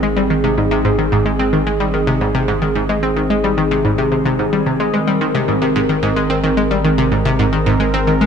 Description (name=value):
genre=ambient, sequencer-driven space music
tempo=110 BPM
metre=4/4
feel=straight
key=Ab major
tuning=A4 = 440 Hz
part: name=sweeping resonant pad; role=sustained chords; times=0.0-8.3 s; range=Eb3 to Bb4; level=-18 LUFS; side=right 2 dB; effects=lush chorus
part: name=concert harp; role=arpeggios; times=0.0-8.3 s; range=Ab3 to Eb5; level=-23 LUFS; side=moving between left 8 dB and left 1 dB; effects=auto-pan, analog delay
part: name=analog pluck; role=riff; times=0.0-8.3 s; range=Ab2 to C4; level=-17 LUFS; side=left 1 dB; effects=chorus, analog delay
part: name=round analog bass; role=bass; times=0.0-8.3 s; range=Ab1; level=-25 LUFS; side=right 1 dB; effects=none
room=moderate plate reverb, RT60 2.4 s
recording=none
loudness=-14 LUFS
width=side -7 dB against mid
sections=0.0-8.3 A section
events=none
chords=0.0 Ab